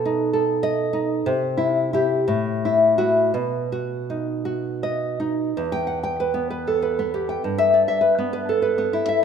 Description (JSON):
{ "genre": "romantic piece for solo classical guitar", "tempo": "52-69 BPM (dotted quarters)", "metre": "6/8", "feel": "rubato", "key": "E minor", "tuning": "A4 = 440 Hz", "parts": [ { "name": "nylon-string guitar", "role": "solo", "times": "0.0-9.2 s", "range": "E2 to G5", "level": "-19 LUFS", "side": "equal", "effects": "none" } ], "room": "moderate concert hall reverb, RT60 2.0 s", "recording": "minimal, uncompressed stereo recording", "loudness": "-19 LUFS", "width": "side -7 dB against mid", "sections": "0.0-5.6 A section; 5.6-9.2 B section", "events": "none", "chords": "0.0 B7; 1.3 C; 2.3 F#m7/A; 3.4 B; 5.6 Em; 7.4 Em/G" }